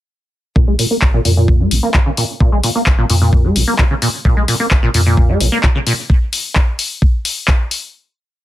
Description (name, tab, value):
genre	acid house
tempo	130 BPM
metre	4/4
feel	straight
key	Bb minor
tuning	A4 = 440 Hz
part	acid bass, saw	riff	0.6-5.9 s	Ab2 to Bb3	-17 LUFS	equal	tube saturation, lush chorus, digital delay
part	electronic kick drum	drums	0.6-7.6 s	none	-12 LUFS	equal	none
part	warm sub bass	bass	0.7-5.5 s	Ab1 to F2	-16 LUFS	equal	sidechain pumping
part	punchy analog drum machine	drums	0.8-7.8 s	handclaps, hi-hat	-18 LUFS	left 2 dB	none
room	light reverb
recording	dense, heavily limited modern master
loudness	-12 LUFS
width	side -14 dB against mid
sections	0.6-7.9 groove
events	filter sweep on acid bass 0.6-6.1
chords	0.6 Bb7(no3)